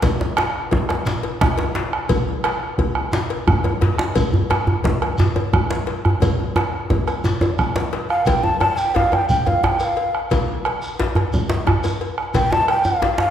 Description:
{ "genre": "west african traditional, West African drum ensemble", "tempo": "117 BPM (dotted quarters)", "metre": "12/8", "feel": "straight", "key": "F major pentatonic", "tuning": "A4 = 440 Hz", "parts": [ { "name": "bombo", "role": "percussion", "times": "0.0-13.3 s", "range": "none", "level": "-22 LUFS", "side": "right 2 dB", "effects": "none" }, { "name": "cowbell", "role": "percussion", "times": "0.0-13.2 s", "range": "none", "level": "-28 LUFS", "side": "left 5 dB", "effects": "none" }, { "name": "djembe", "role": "percussion", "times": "0.0-13.3 s", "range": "none", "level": "-27 LUFS", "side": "left 2 dB", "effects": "none" }, { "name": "djembe", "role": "percussion", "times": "0.0-13.3 s", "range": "none", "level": "-21 LUFS", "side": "right 1 dB", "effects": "none" }, { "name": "shekere", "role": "percussion", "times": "0.0-13.0 s", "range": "none", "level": "-30 LUFS", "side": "equal", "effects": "none" }, { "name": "breathy hollow bansuri", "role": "melody", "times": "8.1-13.3 s", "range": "F5 to A5", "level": "-18 LUFS", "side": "right 1 dB", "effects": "none" } ], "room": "wet scoring stage reverb, RT60 1.5 s", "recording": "recorded in a church or concert hall", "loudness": "-17 LUFS", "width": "side -10 dB against mid", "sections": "0.0-8.3 A section; 8.3-13.3 B section", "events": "drum fill 6.2-8.3", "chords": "none" }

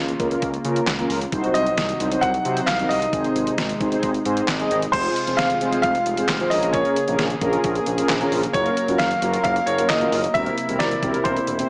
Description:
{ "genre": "synth-pop", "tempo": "133 BPM", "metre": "4/4", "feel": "straight", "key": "Bb minor", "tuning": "A4 = 440 Hz", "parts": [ { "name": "warm analog pad", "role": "sustained chords", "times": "0.0-11.7 s", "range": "C3 to Bb4", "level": "-30 LUFS", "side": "equal", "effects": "chorus" }, { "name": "smooth synth bass", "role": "bass", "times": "0.0-11.6 s", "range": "E1 to Db3", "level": "-30 LUFS", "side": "equal", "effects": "none" }, { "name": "detuned 8-bit digital drum machine", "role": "drums", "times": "0.1-11.7 s", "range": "crash cymbal, handclaps, hi-hat, kick drum, snare drum", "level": "-29 LUFS", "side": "equal", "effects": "gated reverb" }, { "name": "mellow synth brass", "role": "accompaniment", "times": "0.2-11.7 s", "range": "Bb3 to Eb5", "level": "-27 LUFS", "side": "equal", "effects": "chorus" }, { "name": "clear baby grand piano", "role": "melody", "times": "1.5-11.7 s", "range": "C5 to Gb5", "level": "-24 LUFS", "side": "equal", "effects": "slapback echo" } ], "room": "moderate plate reverb, RT60 2.1 s", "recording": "small speaker sound", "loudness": "-21 LUFS", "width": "mono", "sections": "0.0-4.9 A section; 4.9-11.7 B section", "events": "none", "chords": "0.0 Bbm/Db; 1.3 Cdim; 3.1 Ab; 4.9 Fm; 6.5 Bbm7; 8.5 Gbmaj7; 10.3 C7/E" }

